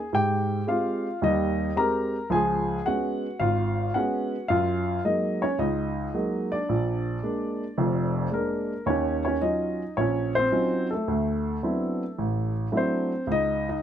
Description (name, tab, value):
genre	solo jazz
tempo	110 BPM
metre	4/4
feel	swing 69% on 8ths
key	unclear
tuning	A4 = 440 Hz
part	dark baby grand piano	solo	0.0-13.8 s	F1 to Bb5	-24 LUFS	equal	none
room	light reverb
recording	close, detailed microphones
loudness	-24 LUFS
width	side -9 dB against mid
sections	0.0-8.9 A section; 8.9-13.8 B section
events	none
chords	0.1 Abmaj7; 2.3 Db7; 4.5 Gb69; 6.7 Bb7; 8.9 Ebm9; 11.1 D13; 13.3 Dbsus2